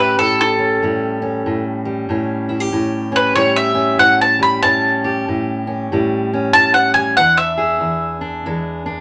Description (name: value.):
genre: acoustic country blues, solo or duo.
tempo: 94 BPM.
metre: 4/4.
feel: swing 61% on 8ths.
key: unclear.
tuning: A4 = 440 Hz.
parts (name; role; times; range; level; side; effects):
bowl-back mandolin; melody; 0.0-8.6 s; A4 to B5; -16 LUFS; equal; none.
fingerpicked steel-string acoustic guitar; accompaniment; 0.0-9.0 s; E2 to G#4; -21 LUFS; equal; none.
room: moderate studio ambience, RT60 0.5 s.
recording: none.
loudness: -16 LUFS.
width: mono.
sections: 0.0-9.0 A section.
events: mandolin solo 0.0-9.0.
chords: 0.0 A7; 7.2 E7.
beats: 0.18 0.81 1.45 | 2.09 2.72 3.36 3.99 | 4.63 5.27 5.90 6.54 | 7.17 7.81 8.45.